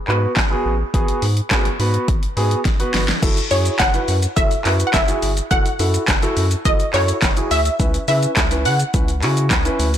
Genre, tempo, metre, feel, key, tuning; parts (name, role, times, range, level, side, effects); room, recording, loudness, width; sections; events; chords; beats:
dance-pop; 105 BPM; 4/4; straight; A4 = 441 Hz
wide unison pluck; melody; 0.0-10.0 s; B4 to F#5; -21 LUFS; equal; ping-pong delay
dark grand piano; accompaniment; 0.1-9.9 s; B3 to B4; -23 LUFS; right 1 dB; sidechain pumping
round analog bass; bass; 0.1-10.0 s; F#1 to C#3; -21 LUFS; equal; sidechain pumping
deep house drum kit; drums; 0.1-10.0 s; crash cymbal, handclaps, hi-hat, kick drum, shaker, snare drum; -19 LUFS; equal
light reverb, digital ambience; blown-out, overdriven recording, overdrive; -15 LUFS; side -10 dB against mid
0.0-3.2 A section; 3.2-10.0 B section
drum fill 2.7-3.2
0.0 G#m7; 3.2 F#m7; 7.8 C#m7
0.37 | 0.94 1.51 2.08 2.65 | 3.23 3.80 4.37 4.94 | 5.51 6.08 6.65 7.23 | 7.80 8.37 8.94 9.51